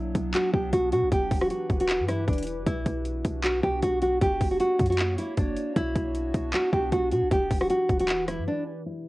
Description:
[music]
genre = hip hop, trap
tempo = 155 BPM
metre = 4/4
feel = half-time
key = B harmonic minor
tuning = A4 = 439 Hz
[part]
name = nylon-string guitar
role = melody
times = 0.0-9.1 s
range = D4 to G4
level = -26 LUFS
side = equal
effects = cassette tape
[part]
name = warbly tape-like pad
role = sustained chords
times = 0.0-9.1 s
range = B2 to C#5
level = -35 LUFS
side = right 1 dB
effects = chorus, built-in reverb, cassette tape
[part]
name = clean 808-style bass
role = bass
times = 0.0-8.5 s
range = E1 to B2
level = -30 LUFS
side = equal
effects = none
[part]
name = trap drum kit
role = drums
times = 0.1-8.4 s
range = handclaps, hi-hat, kick drum, rim click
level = -29 LUFS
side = equal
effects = overdrive, cassette tape
[sound]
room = light reverb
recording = home recording on cassette, low-pass filter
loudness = -23 LUFS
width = side -19 dB against mid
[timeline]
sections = 0.0-8.9 A section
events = break 8.5-8.9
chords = 0.0 Bm; 1.1 Em; 2.7 Bm; 4.2 F#; 5.8 Bm; 7.3 Em

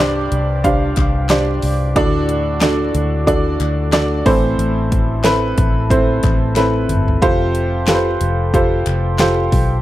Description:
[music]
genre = piano-driven pop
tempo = 91 BPM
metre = 4/4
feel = swing 56% on 16ths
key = unclear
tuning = A4 = 440 Hz
[part]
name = warm upright piano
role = accompaniment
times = 0.0-9.8 s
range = G2 to F5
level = -17 LUFS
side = right 1 dB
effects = plate reverb
[part]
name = glass harmonica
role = sustained chords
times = 0.0-9.8 s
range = C4 to D6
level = -28 LUFS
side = left 3 dB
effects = plate reverb
[part]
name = vintage muted fingered electric bass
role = bass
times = 0.0-9.8 s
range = F1 to D2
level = -19 LUFS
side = equal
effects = none
[part]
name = downlifter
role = sound effects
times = 0.2-2.0 s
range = none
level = -40 LUFS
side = left 2 dB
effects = none
[part]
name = pop drum kit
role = drums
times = 0.3-9.7 s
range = handclaps, hi-hat, kick drum, snare drum, toms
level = -19 LUFS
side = equal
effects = none
[part]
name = group handclap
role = percussion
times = 1.0-9.4 s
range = none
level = -31 LUFS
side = left 14 dB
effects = none
[sound]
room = light reverb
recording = dark, warm production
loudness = -13 LUFS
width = side -14 dB against mid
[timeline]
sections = 0.0-9.8 A section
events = drum fill 6.6-7.2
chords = 0.0 Csus2; 2.0 D; 4.3 Am; 7.2 Fadd9

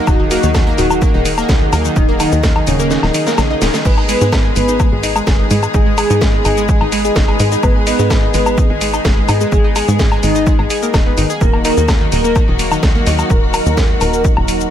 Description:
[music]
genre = melodic techno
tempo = 127 BPM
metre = 4/4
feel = straight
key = G# minor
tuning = A4 = 440 Hz
[part]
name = rich studio string section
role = sustained chords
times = 0.0-14.7 s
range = D#3 to G#4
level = -23 LUFS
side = left 2 dB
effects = sidechain pumping
[part]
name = analog pluck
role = arpeggios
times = 0.0-13.3 s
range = C#3 to G#5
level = -21 LUFS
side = equal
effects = chorus, sidechain pumping, tape echo
[part]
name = deep dark ambient pad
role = texture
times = 0.0-14.7 s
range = D#4 to B5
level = -22 LUFS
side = left 1 dB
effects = chorus, built-in reverb, sidechain pumping
[part]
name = wide unison lead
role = melody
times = 0.1-14.3 s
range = C#4 to B4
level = -21 LUFS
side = equal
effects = sidechain pumping, ping-pong delay
[part]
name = airy dreamy lead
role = second line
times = 0.1-12.4 s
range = C#3 to B3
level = -24 LUFS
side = right 1 dB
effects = chorus, phaser, cassette tape, sidechain pumping, tape echo
[part]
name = tight sequencer bass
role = bass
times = 0.1-14.7 s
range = D#1 to G#2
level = -19 LUFS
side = equal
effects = sidechain pumping
[part]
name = electronic kick drum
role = drums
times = 0.1-14.3 s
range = none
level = -14 LUFS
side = equal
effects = none
[part]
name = techno drum kit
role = drums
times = 0.1-14.7 s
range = crash cymbal, hi-hat, shaker, snare drum, woodblock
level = -20 LUFS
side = left 1 dB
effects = none
[sound]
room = digital ambience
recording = none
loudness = -11 LUFS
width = side -10 dB against mid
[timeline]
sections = 0.0-14.7 A section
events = kick drops out 2.9-3.9; drum fill 2.9-3.9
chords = 0.0 D#m; 3.9 G#m; 11.4 D#m

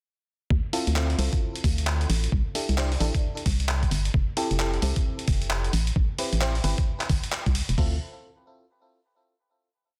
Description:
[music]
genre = UK garage, two-step garage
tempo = 132 BPM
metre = 4/4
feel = swing 62% on 16ths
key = D dorian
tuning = A4 = 445 Hz
[part]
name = organ-like FM bass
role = bass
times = 0.5-8.0 s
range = E1 to D2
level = -27 LUFS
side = equal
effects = sidechain pumping
[part]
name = boom bap sampler-style drum kit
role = drums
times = 0.5-7.9 s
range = hi-hat, kick drum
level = -28 LUFS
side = equal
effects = none
[part]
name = FM electric piano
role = stabs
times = 0.7-8.0 s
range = C4 to C5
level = -34 LUFS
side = equal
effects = chorus, phaser, delay
[part]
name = boom bap sampler-style drum kit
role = drums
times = 0.7-7.8 s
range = handclaps, hi-hat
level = -33 LUFS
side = equal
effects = none
[sound]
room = digital ambience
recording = dense, heavily limited modern master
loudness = -26 LUFS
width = mono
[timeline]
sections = 0.5-7.8 groove; 7.8-9.6 final chord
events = none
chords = 0.5 Dm9; 2.3 C69; 4.1 Fmaj9; 5.7 Am9; 7.8 Dm9

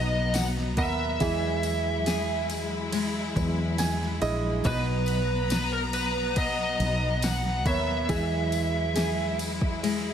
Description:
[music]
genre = pop ballad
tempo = 70 BPM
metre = 4/4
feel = straight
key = unclear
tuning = A4 = 440 Hz
[part]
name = bluesy overdriven lead guitar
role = melody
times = 0.0-9.4 s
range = A#4 to F#5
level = -30 LUFS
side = right 1 dB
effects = distortion, ping-pong delay
[part]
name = warm concert grand piano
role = accompaniment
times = 0.0-10.1 s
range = B2 to G#5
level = -33 LUFS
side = right 3 dB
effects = none
[part]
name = rich symphonic string section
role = sustained chords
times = 0.0-10.1 s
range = F#3 to A#5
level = -33 LUFS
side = left 1 dB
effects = none
[part]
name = picked steel-string acoustic guitar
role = arpeggios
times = 0.0-10.1 s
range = B2 to G#4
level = -34 LUFS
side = left 6 dB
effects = none
[part]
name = woody fretless electric bass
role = bass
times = 0.0-10.1 s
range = A#1 to E2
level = -30 LUFS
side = equal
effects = ensemble chorus
[part]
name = smooth R&B drum kit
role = drums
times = 0.3-10.0 s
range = kick drum, ride cymbal, snare drum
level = -33 LUFS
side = equal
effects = overdrive
[part]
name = tambourine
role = percussion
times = 0.3-9.6 s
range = none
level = -41 LUFS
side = left 9 dB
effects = none
[sound]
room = light reverb, small room ambience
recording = none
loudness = -24 LUFS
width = side -8 dB against mid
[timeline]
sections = 0.0-10.1 A section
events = grand piano fill 3.4-4.6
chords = 0.0 Bmaj7; 1.2 Emaj7; 4.6 Bmaj7; 8.1 E

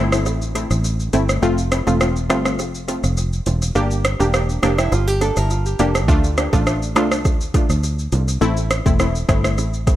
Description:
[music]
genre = dancehall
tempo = 103 BPM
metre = 4/4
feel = straight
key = A phrygian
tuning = A4 = 441 Hz
[part]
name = analog pluck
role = accompaniment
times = 0.0-9.5 s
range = A3 to G4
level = -22 LUFS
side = left 1 dB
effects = chorus, analog delay
[part]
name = fingered electric bass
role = bass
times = 0.0-10.0 s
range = E1 to D2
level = -20 LUFS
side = equal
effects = none
[part]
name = downlifter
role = sound effects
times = 0.4-1.4 s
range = none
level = -39 LUFS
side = equal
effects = none
[part]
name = afro-pop drum kit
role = drums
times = 0.1-10.0 s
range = hi-hat, kick drum, rim click, shaker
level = -21 LUFS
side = equal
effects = overdrive, analog delay
[part]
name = bongos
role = percussion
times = 0.3-10.0 s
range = none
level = -32 LUFS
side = right 5 dB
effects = none
[part]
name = nylon-string guitar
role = arpeggios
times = 4.6-6.0 s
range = D4 to Bb4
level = -24 LUFS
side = right 2 dB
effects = analog delay
[sound]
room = light reverb, digital ambience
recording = echo-heavy mix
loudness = -16 LUFS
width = side -13 dB against mid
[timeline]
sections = 0.0-10.0 A section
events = break 0.0-6.1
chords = 0.0 Am; 1.4 F; 3.8 Gm; 6.1 Dm; 8.4 Am

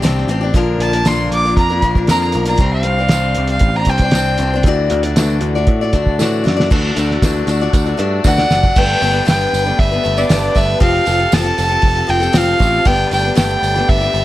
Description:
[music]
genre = folk rock and heartland rock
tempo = 117 BPM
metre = 4/4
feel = straight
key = unclear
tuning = A4 = 440 Hz
[part]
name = picked steel-string acoustic guitar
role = accompaniment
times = 0.0-14.2 s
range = G2 to D5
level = -19 LUFS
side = left 4 dB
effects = none
[part]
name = tonewheel organ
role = sustained chords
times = 0.0-14.2 s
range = F3 to F#5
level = -29 LUFS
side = right 1 dB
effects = fast rotary speaker
[part]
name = picked electric bass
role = bass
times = 0.0-14.2 s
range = F1 to A2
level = -18 LUFS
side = equal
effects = none
[part]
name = cloth-damped thuddy drum kit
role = drums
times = 0.0-14.2 s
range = crash cymbal, hi-hat, kick drum, snare drum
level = -16 LUFS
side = right 1 dB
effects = none
[part]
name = tambourine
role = percussion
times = 0.0-14.0 s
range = none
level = -31 LUFS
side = right 11 dB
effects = none
[part]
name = warm fiddle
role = melody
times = 0.8-4.6, 8.3-14.2 s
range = D5 to D6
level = -17 LUFS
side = right 1 dB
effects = none
[sound]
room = light reverb, small room reverb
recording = none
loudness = -12 LUFS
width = side -15 dB against mid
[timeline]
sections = 0.0-6.7 A section; 6.7-8.8 B section; 8.8-14.2 C section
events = fiddle solo 0.0-6.7; drum fill 6.2-6.7, 8.3-8.8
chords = 0.0 Csus2; 0.5 Bb; 2.6 Csus2; 4.7 Dadd9; 8.8 Gadd9; 10.8 Fadd9; 12.9 Gadd9

